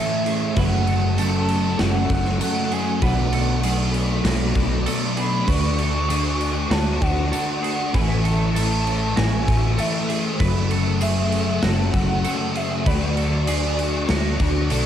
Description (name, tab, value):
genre	rock, shoegaze and dream pop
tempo	98 BPM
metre	4/4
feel	straight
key	D lydian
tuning	A4 = 442 Hz
part	warm velvety synth lead	melody	0.0-14.7 s	D5 to C#6	-28 LUFS	right 2 dB	chorus, cassette tape, tape echo
part	string machine, violins	sustained chords	0.0-14.9 s	A3 to E6	-30 LUFS	equal	ensemble chorus, cassette tape
part	twelve-string electric guitar	arpeggios	0.0-14.9 s	F#4 to B4	-32 LUFS	right 10 dB	lush chorus, cassette tape, tape echo
part	overdriven semi-hollow guitar	riff	0.0-14.9 s	F#2 to F#4	-29 LUFS	right 10 dB	reverse reverb, cassette tape
part	thick fuzz guitar	riff	0.0-14.9 s	F#2 to D4	-25 LUFS	left 8 dB	distortion, ensemble chorus, cassette tape
part	big rock drum kit	drums	0.3-14.8 s	crash cymbal, kick drum, snare drum	-25 LUFS	right 1 dB	cassette tape
part	vintage muted fingered electric bass	bass	0.6-14.9 s	F#1 to D2	-23 LUFS	equal	none
part	tambourine	percussion	1.2-14.9 s	none	-38 LUFS	left 14 dB	none
room	little or no reverb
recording	home recording on cassette, faint mains hum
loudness	-18 LUFS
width	side -10 dB against mid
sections	0.0-14.9 A section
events	none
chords	0.0 Amaj7; 0.6 F#m7; 3.0 Bm7; 5.5 Dmaj7; 7.9 Amaj7; 10.4 F#m7; 12.9 Dmaj7